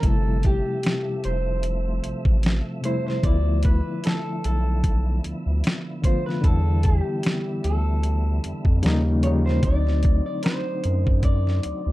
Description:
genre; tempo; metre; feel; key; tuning
R&B, neo-soul; 75 BPM; 4/4; swing 54% on 16ths; D dorian; A4 = 438 Hz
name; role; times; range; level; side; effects
electric guitar through a small old amp; melody; 0.0-11.9 s; G4 to D5; -30 LUFS; right 1 dB; tape echo, plate reverb
overdriven reed electric piano; accompaniment; 0.0-11.9 s; C3 to F4; -28 LUFS; left 2 dB; fast tremolo, plate reverb
tonewheel organ; sustained chords; 0.0-11.9 s; C3 to E5; -35 LUFS; right 1 dB; chorus vibrato, stopped rotary speaker
round analog bass; bass; 0.0-11.9 s; F1 to F#2; -22 LUFS; equal; none
boom bap sampler-style drum kit; drums; 0.0-11.8 s; hi-hat, kick drum, snare drum; -22 LUFS; equal; none
room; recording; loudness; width
light reverb; dark, warm production; -20 LUFS; side -17 dB against mid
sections
0.0-11.9 A section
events
none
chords
0.0 G13sus4; 3.2 Dm69; 6.4 Em7; 8.8 Eb9; 9.6 D7b9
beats
| 0.03 0.83 1.63 2.43 | 3.23 4.03 4.83 5.63 | 6.43 7.23 8.03 8.83 | 9.63 10.43 11.23

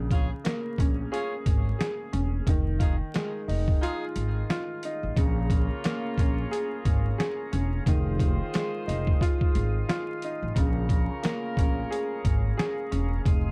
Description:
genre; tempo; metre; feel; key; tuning
hip hop, boom-bap hip-hop; 89 BPM; 4/4; swing 59% on 16ths; Bb minor; A4 = 441 Hz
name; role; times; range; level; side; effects
warm upright piano; accompaniment; 0.0-13.3 s; Db3 to Ab4; -35 LUFS; equal; high-pass filter, low-pass filter
upright bass; bass; 0.0-13.5 s; E1 to Bb1; -30 LUFS; equal; none
warm horn section; stabs; 0.1-13.5 s; Bb3 to C5; -40 LUFS; equal; high-pass filter, low-pass filter, tape echo
trip hop sampler-style drum kit; drums; 0.1-13.4 s; hi-hat, kick drum, snare drum; -28 LUFS; equal; none
mellow tonewheel organ; sustained chords; 5.2-13.5 s; Ab4 to Eb6; -43 LUFS; equal; slow rotary speaker, high-pass filter, low-pass filter
room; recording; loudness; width
little or no reverb; dark, warm production, vinyl crackle; -27 LUFS; mono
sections
0.0-5.2 A section; 5.2-13.5 A section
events
break 3.8-5.2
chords
0.0 Bbm7; 2.5 Fm7; 5.2 Bbm7; 7.9 Fm7; 10.6 Bbm7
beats
0.45 1.12 1.80 | 2.47 3.15 3.82 4.49 | 5.17 5.84 6.52 7.19 | 7.86 8.54 9.21 9.89 | 10.56 11.23 11.91 12.58 | 13.26

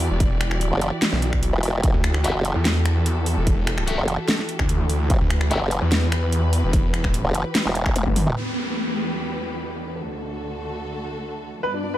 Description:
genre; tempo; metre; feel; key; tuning
heavy wobble dubstep; 147 BPM; 4/4; half-time; E minor; A4 = 440 Hz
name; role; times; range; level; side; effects
warm symphonic string section; sustained chords; 0.0-12.0 s; D2 to D5; -30 LUFS; equal; sidechain pumping, low-pass filter
snarling distorted saw bass; bass; 0.0-8.2 s; E1 to E2; -21 LUFS; equal; distortion, overdrive
dubstep drum kit; drums; 0.0-8.3 s; finger snaps, hi-hat, snare drum, toms; -24 LUFS; equal; low-pass filter on hats, studio ambience, low-pass filter on cymbals, low-pass filter on snare, low-pass filter on toms
electronic kick drum; drums; 0.2-7.9 s; none; -22 LUFS; equal; studio ambience
formant-sweep wobble bass; bass; 0.7-8.3 s; E1 to G1; -22 LUFS; equal; chorus, overdrive
distorted electric guitar; stabs; 2.2-5.6 s; F#4 to E5; -31 LUFS; left 5 dB; overdrive, ping-pong delay
downlifter; sound effects; 8.4-11.6 s; none; -29 LUFS; equal; none
clear concert grand piano; melody; 11.6-12.0 s; D4 to B4; -23 LUFS; left 2 dB; none
room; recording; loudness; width
little or no reverb; none; -20 LUFS; side -13 dB against mid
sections
0.0-8.4 A section; 8.4-12.0 B section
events
drop 0.0-8.4; drum fill 8.0-8.4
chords
0.0 Emadd9; 8.4 Em; 10.0 D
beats
| 0.20 0.61 1.02 1.43 | 1.83 2.24 2.65 3.06 | 3.47 3.88 4.28 4.69 | 5.10 5.51 5.92 6.33 | 6.73 7.14 7.55 7.96 | 8.37 8.77 9.18 9.59 | 10.00 10.41 10.81 11.22 | 11.63

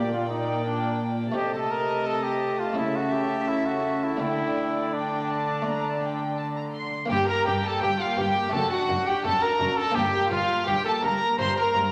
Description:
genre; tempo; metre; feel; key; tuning
classical, baroque-style concerto movement with solo episodes; 84 BPM; 4/4; straight; G minor; A4 = 440 Hz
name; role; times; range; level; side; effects
clear trumpet; melody; 0.0-11.9 s; D4 to C5; -30 LUFS; equal; none
rich chamber violin section; melody; 0.0-11.9 s; F5 to C6; -32 LUFS; equal; none
rich chamber violin section; second line; 0.0-11.9 s; F4 to E5; -33 LUFS; equal; none
buff-stop harpsichord; accompaniment; 0.0-11.9 s; F#2 to G4; -36 LUFS; equal; none
dark chamber viola section; accompaniment; 0.0-11.9 s; G3 to F#4; -36 LUFS; equal; none
dark chamber cello section; bass; 0.0-11.8 s; F#2 to D3; -34 LUFS; equal; none
rich chamber double bass section; bass; 7.1-11.8 s; F#1 to G1; -40 LUFS; equal; none
room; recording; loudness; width
wet recital hall reverb, RT60 1.6 s; none; -26 LUFS; mono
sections
0.0-7.1 A section; 7.1-11.9 B section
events
none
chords
0.0 Gm/Bb; 1.4 Adim/C; 2.8 A/C#; 4.2 Dsus4; 7.1 Gm; 8.5 D/F#; 10.0 Gm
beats
0.64 | 1.35 2.06 2.77 3.48 | 4.21 4.93 5.66 6.38 | 7.11 7.82 8.54 9.25 | 9.96 10.68 11.39

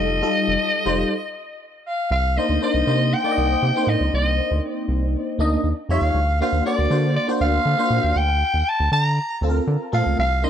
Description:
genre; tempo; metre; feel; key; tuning
polished 1980s jazz-funk pop; 119 BPM; 4/4; straight; C dorian; A4 = 438 Hz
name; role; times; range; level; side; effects
raspy soprano saxophone; melody; 0.0-10.5 s; D5 to Bb5; -22 LUFS; left 1 dB; none
FM electric piano; accompaniment; 0.0-10.5 s; G3 to Eb5; -23 LUFS; left 1 dB; ensemble chorus
round analog bass; bass; 0.0-10.5 s; F1 to D3; -21 LUFS; equal; none
room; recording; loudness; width
light reverb, small room ambience; none; -18 LUFS; side -9 dB against mid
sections
0.0-2.1 A section; 2.1-10.5 B section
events
stop 1.1-2.1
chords
0.0 F9; 2.1 Cm9; 5.6 Eb9; 6.1 D7alt; 8.2 Gm11/D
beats
| 0.10 0.60 1.10 1.61 | 2.11 2.62 3.12 3.62 | 4.13 4.63 5.14 5.64 | 6.14 6.65 7.15 7.66 | 8.16 8.67 9.17 9.68 | 10.18

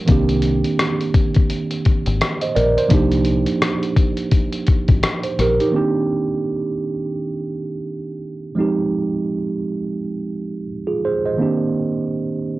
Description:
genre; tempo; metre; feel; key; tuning
lo-fi hip hop; 85 BPM; 4/4; swing 60% on 16ths; C minor; A4 = 442 Hz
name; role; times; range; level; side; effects
mellow tine electric piano; accompaniment; 0.0-12.6 s; Eb3 to Eb5; -20 LUFS; right 3 dB; medium stereo tremolo, cassette tape
deep dub fingered electric bass; bass; 0.1-5.6 s; Ab1 to C2; -20 LUFS; left 2 dB; none
lo-fi sampler-style drum kit; drums; 0.1-5.7 s; hi-hat, kick drum, rim click; -18 LUFS; left 2 dB; vintage 12-bit sampler grit, cassette tape
room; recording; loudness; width
moderate studio reverb, RT60 0.6 s; home recording on cassette, nothing above 10.6 kHz; -17 LUFS; side -17 dB against mid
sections
0.0-5.7 A section; 5.7-12.6 B section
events
none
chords
0.1 Cm7; 2.9 Cm11; 5.7 Cm7; 8.6 Fm7; 11.4 Cm7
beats
| 0.09 0.79 1.50 2.20 | 2.91 3.62 4.32 5.03 | 5.73 6.44 7.14 7.85 | 8.56 9.26 9.97 10.67 | 11.38 12.09

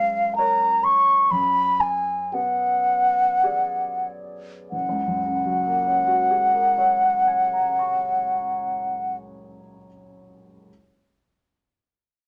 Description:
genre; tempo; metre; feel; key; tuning
classical, impressionist duo for flute and grand piano; 44-66 BPM; 3/4; rubato; F# major; A4 = 437 Hz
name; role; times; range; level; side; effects
mellow silver concert flute; melody; 0.0-9.2 s; E#5 to C#6; -22 LUFS; equal; none
warm grand piano; accompaniment; 0.0-10.7 s; F#1 to C#6; -35 LUFS; equal; none
room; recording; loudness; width
light reverb; none; -21 LUFS; mono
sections
0.0-4.7 A section; 4.7-8.4 B section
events
slowing down 0.0-4.7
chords
0.0 F#maj9; 1.3 Bm6/F#; 4.7 F#add9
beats
0.37 | 1.32 2.34 3.44 | 4.72 5.95 7.18

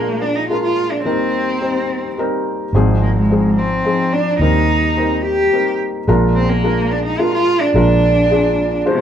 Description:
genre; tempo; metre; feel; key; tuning
folk; 107 BPM; 3/4; straight; Eb major; A4 = 441 Hz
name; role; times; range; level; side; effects
warm cello; melody; 0.0-9.0 s; C3 to G4; -17 LUFS; right 1 dB; none
felt-muted upright piano; accompaniment; 0.0-9.0 s; Ab1 to C5; -18 LUFS; left 2 dB; none
vintage muted fingered electric bass; bass; 2.7-8.8 s; Ab1 to Eb2; -17 LUFS; right 1 dB; none
room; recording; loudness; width
moderate studio reverb, RT60 0.8 s; band playing live in one room; -14 LUFS; side -9 dB against mid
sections
0.0-9.0 A section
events
none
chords
0.0 Bb7; 1.0 Eb6; 2.7 Ab6; 4.4 Eb6; 6.1 Bb7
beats
0.49 | 1.05 1.61 2.17 | 2.73 3.29 3.84 | 4.40 4.96 5.52 | 6.08 6.63 7.19 | 7.75 8.31 8.87

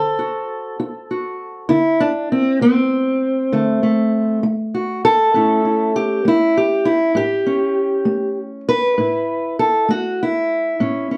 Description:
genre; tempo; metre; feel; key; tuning
acoustic country blues, solo or duo; 66 BPM (dotted quarters); 12/8; straight; A mixolydian; A4 = 440 Hz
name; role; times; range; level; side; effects
fingerpicked steel-string acoustic guitar; solo; 0.0-11.2 s; A2 to C5; -18 LUFS; equal; none
room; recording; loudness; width
moderate studio reverb, RT60 0.6 s; worn, warbling old tape, cassette tape, warbly pitch drift; -18 LUFS; mono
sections
0.0-11.2 A section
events
steel-string acoustic guitar solo 0.0-11.2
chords
0.0 D7; 5.3 A7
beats
0.80 | 1.71 2.62 3.53 4.44 | 5.34 6.25 7.16 8.07 | 8.97 9.88 10.79

